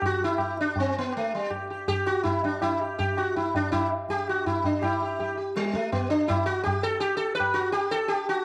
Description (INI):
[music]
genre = indian classical, Hindustani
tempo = 163 BPM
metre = 4/4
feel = straight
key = G raga bilaval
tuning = A4 = 440 Hz
[part]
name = sitar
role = melody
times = 0.0-8.4 s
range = G3 to B4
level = -28 LUFS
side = equal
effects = cassette tape
[part]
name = tabla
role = percussion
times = 0.0-8.4 s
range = none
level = -34 LUFS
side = equal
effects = none
[sound]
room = moderate spring reverb, RT60 1.9 s, small room reverb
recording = home recording on cassette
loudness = -27 LUFS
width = mono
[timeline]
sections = 0.0-4.8 A section; 4.8-8.4 B section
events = none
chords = none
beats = 0.02 | 0.39 0.76 1.13 1.50 | 1.87 2.24 2.61 2.98 | 3.35 3.72 4.09 4.46 | 4.82 5.19 5.56 5.93 | 6.29 6.66 7.03 7.39 | 7.76 8.13